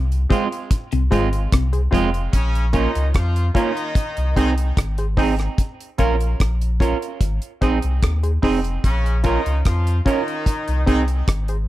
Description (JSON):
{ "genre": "roots reggae", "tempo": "74 BPM", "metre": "4/4", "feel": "straight", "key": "Bb minor", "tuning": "A4 = 437 Hz", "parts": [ { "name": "clean electric guitar", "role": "riff", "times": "0.0-2.2 s", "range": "F2 to C3", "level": "-25 LUFS", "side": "left 5 dB", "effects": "none" }, { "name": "warm sub bass", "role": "bass", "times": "0.0-11.7 s", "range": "F1 to F2", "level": "-20 LUFS", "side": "equal", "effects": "none" }, { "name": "deep reggae drum kit", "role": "drums", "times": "0.1-11.7 s", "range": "hi-hat, kick drum, rim click", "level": "-20 LUFS", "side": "equal", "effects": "none" }, { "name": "semi-hollow electric guitar", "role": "accompaniment", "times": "0.3-11.0 s", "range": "Ab3 to Bb4", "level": "-24 LUFS", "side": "right 6 dB", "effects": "spring reverb, tape echo, plate reverb" }, { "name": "filtered dub chord stab", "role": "stabs", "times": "0.3-11.6 s", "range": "C4 to Db5", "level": "-26 LUFS", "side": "left 3 dB", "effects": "chorus, plate reverb" }, { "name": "clear horn section", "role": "second line", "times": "2.3-11.0 s", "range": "Db3 to F4", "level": "-27 LUFS", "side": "left 1 dB", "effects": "tape echo, plate reverb" } ], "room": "light reverb", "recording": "none", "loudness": "-17 LUFS", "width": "side -15 dB against mid", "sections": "0.0-2.3 A section; 2.3-11.7 B section", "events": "none", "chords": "0.0 Fm; 2.3 Bbm; 4.0 Ab; 5.6 Bbm; 7.2 Ab; 8.8 Bbm; 10.5 Ab" }